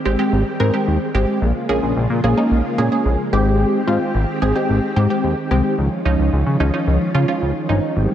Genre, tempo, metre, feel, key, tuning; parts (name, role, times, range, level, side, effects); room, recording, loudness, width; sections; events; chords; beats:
synth-pop; 110 BPM; 4/4; straight; Ab major; A4 = 440 Hz
ensemble organ-string; sustained chords; 0.0-8.1 s; Db3 to G4; -23 LUFS; equal; ensemble chorus
funky polysynth comp; accompaniment; 0.1-7.9 s; F3 to Bb4; -19 LUFS; equal; chorus
chorused synth bass; bass; 0.1-8.1 s; G1 to Db3; -18 LUFS; equal
light reverb; -16 LUFS; side -10 dB against mid
0.0-8.1 A section
0.0 Abmaj7; 1.4 Bbm7; 3.3 Abmaj7; 5.8 Dbadd9
0.33 0.87 | 1.42 1.96 2.51 3.06 | 3.60 4.14 4.69 5.24 | 5.78 6.33 6.87 7.42 | 7.96